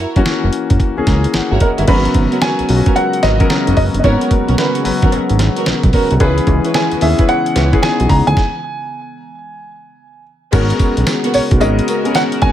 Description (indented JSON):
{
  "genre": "R&B, new jack swing",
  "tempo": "111 BPM",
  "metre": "4/4",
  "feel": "swing 64% on 16ths",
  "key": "G# minor",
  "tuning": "A4 = 442 Hz",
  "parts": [
    { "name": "dark symphonic string section", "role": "stabs", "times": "0.0-12.5 s", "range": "B3 to B4", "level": "-22 LUFS", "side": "right 2 dB", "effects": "none" },
    { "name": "fat analog bass", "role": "bass", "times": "0.0-12.5 s", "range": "F#1 to F#2", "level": "-15 LUFS", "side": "right 1 dB", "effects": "none" },
    { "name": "warm concert grand piano", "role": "accompaniment", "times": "0.2-12.5 s", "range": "D#3 to A#5", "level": "-18 LUFS", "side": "left 5 dB", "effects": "none" },
    { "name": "dusty soul sampler-style drum kit", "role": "drums", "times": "0.2-12.5 s", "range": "crash cymbal, hi-hat, kick drum, snare drum, tambourine", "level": "-16 LUFS", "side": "right 1 dB", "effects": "gated reverb" },
    { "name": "warm baby grand piano", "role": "melody", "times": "1.6-12.5 s", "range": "A#4 to A#5", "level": "-19 LUFS", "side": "right 1 dB", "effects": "none" },
    { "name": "sweeping resonant pad", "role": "sustained chords", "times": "1.9-12.5 s", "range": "C#3 to A#4", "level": "-23 LUFS", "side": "right 2 dB", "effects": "chorus" },
    { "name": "cowbell", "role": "percussion", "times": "1.9-12.3 s", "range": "none", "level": "-31 LUFS", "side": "right 8 dB", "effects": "none" }
  ],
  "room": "small room ambience",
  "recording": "none",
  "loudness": "-11 LUFS",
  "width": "side -11 dB against mid",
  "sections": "0.0-1.9 A section; 1.9-10.5 B section; 10.5-12.5 C section",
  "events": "grand piano fill 0.8-1.9; stop 8.4-10.5",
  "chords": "0.0 F#7; 1.9 G#m11; 6.2 C#m7; 8.4 N.C.; 10.5 G#m11"
}